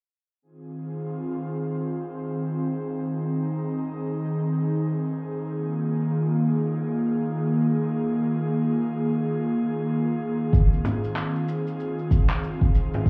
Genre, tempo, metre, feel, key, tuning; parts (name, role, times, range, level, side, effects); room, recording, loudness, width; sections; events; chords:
organic downtempo; 95 BPM; 4/4; swing 59% on 16ths; F minor; A4 = 444 Hz
airy breathy pad; sustained chords; 0.4-13.1 s; Eb3 to Ab4; -27 LUFS; equal; chorus, sidechain pumping
electronic kick drum; drums; 10.5-13.1 s; -22 LUFS; equal
electronic shaker and handclaps; drums; 10.5-13.1 s; -37 LUFS; equal; low-pass filter on perc, low-pass filter on snare, low-pass filter on room
frame drum; percussion; 10.8-13.0 s; -30 LUFS; equal
wet echo chamber reverb, RT60 2.1 s; heard muffled through a wall, club reverb, EQ; -26 LUFS; mono
0.4-13.1 A section
0.4 Fm7; 5.5 Bb7sus4; 10.5 Fm7